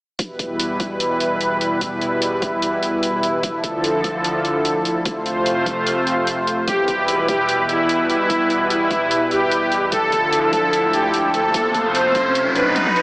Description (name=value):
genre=heavy wobble dubstep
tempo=148 BPM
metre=4/4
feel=swing 54% on 16ths, half-time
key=E phrygian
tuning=A4 = 441 Hz
part: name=lush unison pad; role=sustained chords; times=0.2-13.0 s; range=D2 to C5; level=-19 LUFS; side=equal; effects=chorus, sidechain pumping
part: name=dubstep drum kit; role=drums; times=0.2-13.0 s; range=hi-hat, toms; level=-26 LUFS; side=equal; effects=overdrive
part: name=electronic kick drum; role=drums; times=0.2-12.9 s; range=none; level=-27 LUFS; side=equal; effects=overdrive, high-pass filter on kick
part: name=soft supersaw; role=melody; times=6.7-13.0 s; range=E4 to C5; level=-18 LUFS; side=equal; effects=phaser, diffuse ambient delay
part: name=riser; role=sound effects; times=11.2-13.0 s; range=none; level=-23 LUFS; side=equal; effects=none
room=wet lush hall reverb, RT60 2.0 s, digital ambience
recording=dreamy mix soaked in reverb, AM radio sound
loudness=-16 LUFS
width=side -23 dB against mid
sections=0.2-13.0 A section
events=riser 11.2-13.0; drum fill 12.8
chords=0.2 Em; 3.4 Dmadd9; 5.1 F; 6.7 Em; 9.9 Dmadd9; 11.5 F; 12.4 Badd9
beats=| 0.19 0.60 1.00 1.41 | 1.81 2.22 2.62 3.03 | 3.43 3.84 4.25 4.65 | 5.05 5.46 5.87 6.27 | 6.68 7.08 7.49 7.89 | 8.30 8.70 9.11 9.52 | 9.92 10.33 10.73 11.14 | 11.54 11.95 12.35 12.76